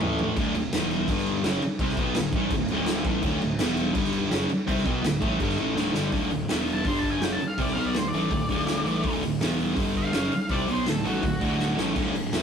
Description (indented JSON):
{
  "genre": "garage rock duo or trio",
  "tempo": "165 BPM",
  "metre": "4/4",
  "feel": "straight",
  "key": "D mixolydian",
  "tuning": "A4 = 440 Hz",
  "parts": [
    { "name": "fuzz guitar", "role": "riff", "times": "0.0-12.4 s", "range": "D2 to C4", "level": "-25 LUFS", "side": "equal", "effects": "distortion" },
    { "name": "fuzz picked electric bass", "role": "bass", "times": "0.0-12.4 s", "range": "D1 to A2", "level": "-34 LUFS", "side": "equal", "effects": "overdrive" },
    { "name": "raw garage drum kit", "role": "drums", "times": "0.0-12.4 s", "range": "crash cymbal, hi-hat, kick drum, snare drum, toms", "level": "-28 LUFS", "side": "equal", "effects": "none" },
    { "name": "octave-fuzz lead guitar", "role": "melody", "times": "6.7-11.8 s", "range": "F#4 to C6", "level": "-31 LUFS", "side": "left 1 dB", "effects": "distortion" }
  ],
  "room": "moderate studio reverb, RT60 0.6 s",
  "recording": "rough rehearsal-room recording",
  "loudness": "-23 LUFS",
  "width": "side -7 dB against mid",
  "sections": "0.4-6.1 A section; 6.1-12.4 B section",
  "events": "drum fill 0.0-0.4, 5.8-6.1, 11.6-12.0; lead electric guitar solo 6.1-12.4",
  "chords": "0.4 D5; 0.7 E5; 1.1 G5; 1.4 D; 3.6 E5; 4.0 G5; 4.3 D; 6.1 D5; 6.5 E5; 6.8 G5; 7.2 D; 9.4 E5; 9.8 G5; 10.1 D",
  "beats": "0.01 | 0.36 0.72 1.08 1.44 | 1.80 2.16 2.52 2.88 | 3.23 3.60 3.96 4.32 | 4.68 5.04 5.40 5.76 | 6.12 6.49 6.85 7.21 | 7.58 7.94 8.31 8.67 | 9.04 9.40 9.77 10.13 | 10.50 10.86 11.23 11.59 | 11.96 12.32"
}